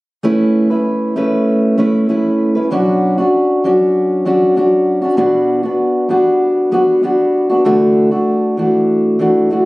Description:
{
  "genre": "pop",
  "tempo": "97 BPM",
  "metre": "4/4",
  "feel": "straight",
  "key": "unclear",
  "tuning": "A4 = 441 Hz",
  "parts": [
    { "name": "fingerpicked steel-string acoustic guitar", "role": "accompaniment", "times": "0.2-9.7 s", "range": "B2 to B4", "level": "-11 LUFS", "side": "equal", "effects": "none" }
  ],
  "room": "light reverb",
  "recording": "recorded on a phone in the room, club reverb, compression",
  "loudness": "-11 LUFS",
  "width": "side -20 dB against mid",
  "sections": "0.2-9.7 A section",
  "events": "none",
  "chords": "0.2 Aadd9; 2.7 Bmadd9; 5.2 Gmaj7/B; 7.7 Dadd9",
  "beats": "| 0.24 0.85 1.47 2.09 | 2.71 3.33 3.95 4.57 | 5.18 5.80 6.42 7.04 | 7.66 8.27 8.89 9.51"
}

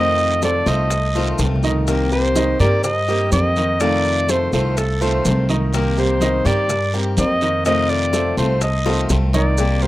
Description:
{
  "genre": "latin, Cuban son and guajira",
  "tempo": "125 BPM",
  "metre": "4/4",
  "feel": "straight",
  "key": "unclear",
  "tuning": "A4 = 441 Hz",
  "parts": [
    { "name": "warm clarinet", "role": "melody", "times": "0.0-9.9 s", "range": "A4 to Eb5", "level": "-20 LUFS", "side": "equal", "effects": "none" },
    { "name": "nylon-string guitar", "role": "second line", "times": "0.0-9.9 s", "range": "F4 to C5", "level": "-31 LUFS", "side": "right 2 dB", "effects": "none" },
    { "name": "picked steel-string acoustic guitar", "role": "accompaniment", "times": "0.0-9.9 s", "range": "C3 to G4", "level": "-24 LUFS", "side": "left 6 dB", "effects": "none" },
    { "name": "clear baby grand piano", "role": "arpeggios", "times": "0.0-9.9 s", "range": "Eb3 to F5", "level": "-24 LUFS", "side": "right 3 dB", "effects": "none" },
    { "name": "upright bass", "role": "bass", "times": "0.0-9.9 s", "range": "C2 to G2", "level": "-20 LUFS", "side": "equal", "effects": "none" },
    { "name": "bongos and cowbell", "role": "percussion", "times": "0.2-9.8 s", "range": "none", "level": "-30 LUFS", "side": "left 7 dB", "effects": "none" },
    { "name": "congas", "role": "percussion", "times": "0.2-9.9 s", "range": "none", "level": "-29 LUFS", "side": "left 1 dB", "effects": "none" },
    { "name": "maracas", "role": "percussion", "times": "0.2-9.9 s", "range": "none", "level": "-31 LUFS", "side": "right 2 dB", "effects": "none" },
    { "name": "guiro", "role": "percussion", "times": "0.4-9.9 s", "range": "none", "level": "-31 LUFS", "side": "right 3 dB", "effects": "none" }
  ],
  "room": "light reverb",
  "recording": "rough home demo mix",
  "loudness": "-15 LUFS",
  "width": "side -16 dB against mid",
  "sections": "0.0-9.6 A section",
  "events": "drum fill 1.4-1.9, 8.9-9.6",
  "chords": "0.0 F7; 1.9 Cm7; 3.8 F7; 5.7 Cm7; 7.7 F7",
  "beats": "0.42 0.91 1.39 | 1.88 2.36 2.84 3.32 | 3.81 4.29 4.77 5.25 | 5.73 6.21 6.70 7.17 | 7.66 8.13 8.62 9.10 | 9.57"
}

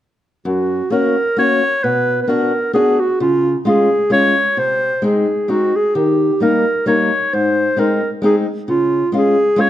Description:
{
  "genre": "alpine folk",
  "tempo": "132 BPM",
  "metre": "3/4",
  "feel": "swing 55% on 8ths",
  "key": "F# major",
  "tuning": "A4 = 440 Hz",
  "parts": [
    { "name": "mellow clarinet", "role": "melody", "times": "0.5-9.7 s", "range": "E#4 to C#5", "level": "-15 LUFS", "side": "right 1 dB", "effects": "none" },
    { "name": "fingerpicked old ladder-braced acoustic guitar", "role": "accompaniment", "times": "0.5-9.7 s", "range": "F#2 to F#4", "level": "-18 LUFS", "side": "left 2 dB", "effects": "none" }
  ],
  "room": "moderate recital hall reverb, RT60 1.4 s",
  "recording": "none",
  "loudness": "-13 LUFS",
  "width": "side -12 dB against mid",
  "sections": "0.5-9.7 A section",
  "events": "none",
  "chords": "0.5 F#; 1.8 Bm; 3.2 C#; 4.6 G#/B#; 6.0 D#7; 7.3 G#; 8.7 C#",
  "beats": "| 0.47 0.93 1.39 | 1.84 2.30 2.75 | 3.21 3.66 4.12 | 4.58 5.03 5.49 | 5.95 6.41 6.87 | 7.33 7.78 8.23 | 8.69 9.14 9.59"
}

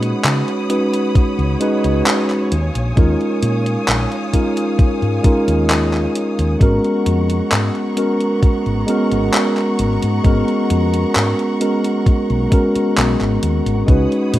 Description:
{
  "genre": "vaporwave",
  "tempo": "66 BPM",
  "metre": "4/4",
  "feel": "straight",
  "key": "G# dorian",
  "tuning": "A4 = 440 Hz",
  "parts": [
    { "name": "mellow tine electric piano", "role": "accompaniment", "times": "0.0-14.4 s", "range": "G#3 to B4", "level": "-17 LUFS", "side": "equal", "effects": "wide subtle chorus, analog delay" },
    { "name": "rich studio string section", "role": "sustained chords", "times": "0.0-14.4 s", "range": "B3 to D#6", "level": "-27 LUFS", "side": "equal", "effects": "none" },
    { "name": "woody fretless electric bass", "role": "bass", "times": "0.0-14.4 s", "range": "G#1 to C#3", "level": "-18 LUFS", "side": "equal", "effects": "none" },
    { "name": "gated 80s digital drum machine", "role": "drums", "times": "0.0-14.4 s", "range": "handclaps, hi-hat", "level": "-21 LUFS", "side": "equal", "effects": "gated reverb" },
    { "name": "electronic kick drum", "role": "drums", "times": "1.2-14.1 s", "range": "none", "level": "-12 LUFS", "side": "equal", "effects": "none" }
  ],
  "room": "light reverb, digital ambience",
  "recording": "rough home demo mix",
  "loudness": "-14 LUFS",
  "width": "side -14 dB against mid",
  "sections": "0.0-14.4 A section",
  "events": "none",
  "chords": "0.0 C#9sus4; 2.5 D#9sus4; 6.6 G#m11; 13.9 C#9sus4",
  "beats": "0.24 1.15 2.06 | 2.97 3.88 4.79 5.70 | 6.61 7.52 8.43 9.34 | 10.24 11.15 12.06 12.97 | 13.88"
}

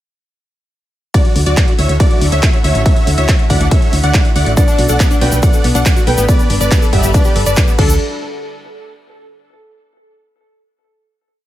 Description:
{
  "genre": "uplifting trance",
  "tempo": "140 BPM",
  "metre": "4/4",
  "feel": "straight",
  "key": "D major",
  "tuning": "A4 = 436 Hz",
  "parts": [
    { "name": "dense compressed supersaw", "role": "melody", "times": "1.1-7.9 s", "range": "F#4 to G5", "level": "-20 LUFS", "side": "equal", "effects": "sidechain pumping, tape echo" },
    { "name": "wide unison pluck", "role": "second line", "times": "1.1-7.9 s", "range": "A4 to G5", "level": "-24 LUFS", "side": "equal", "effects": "sidechain pumping, tape echo" },
    { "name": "lush unison pad", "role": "sustained chords", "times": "1.1-8.0 s", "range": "D3 to B4", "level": "-24 LUFS", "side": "right 1 dB", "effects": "chorus, sidechain pumping" },
    { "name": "electronic kick drum", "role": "drums", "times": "1.1-7.9 s", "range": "none", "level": "-12 LUFS", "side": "equal", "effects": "none" },
    { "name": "punchy analog drum machine", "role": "drums", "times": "1.1-7.9 s", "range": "crash cymbal, handclaps, hi-hat, ride cymbal", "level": "-22 LUFS", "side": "equal", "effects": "sidechain pumping on hats, sidechain pumping on cymbals" },
    { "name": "solid FM bass", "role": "bass", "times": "1.4-8.0 s", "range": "G1 to D2", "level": "-14 LUFS", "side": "equal", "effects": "sidechain pumping" },
    { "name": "warm grand piano", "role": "second line", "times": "4.6-7.9 s", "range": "B3 to D5", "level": "-23 LUFS", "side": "right 1 dB", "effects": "tape echo" },
    { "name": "analog pluck", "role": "arpeggios", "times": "4.6-8.0 s", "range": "B3 to A4", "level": "-23 LUFS", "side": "left 4 dB", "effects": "chorus, sidechain pumping, tape echo" },
    { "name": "tube shaker", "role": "percussion", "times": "4.6-8.0 s", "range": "none", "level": "-26 LUFS", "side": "left 1 dB", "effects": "none" }
  ],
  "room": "little or no reverb",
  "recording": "none",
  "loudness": "-10 LUFS",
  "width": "side -14 dB against mid",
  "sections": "1.1-8.0 drop; 8.0-9.7 final hit",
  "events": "drop 1.1-8.0",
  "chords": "1.1 Dadd9; 4.6 Bm7; 6.3 Gadd9; 7.8 Dadd9; 8.0 N.C.",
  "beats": "| 1.14 1.57 2.00 2.43 | 2.86 3.29 3.71 4.14 | 4.57 5.00 5.43 5.86 | 6.29 6.71 7.14 7.57"
}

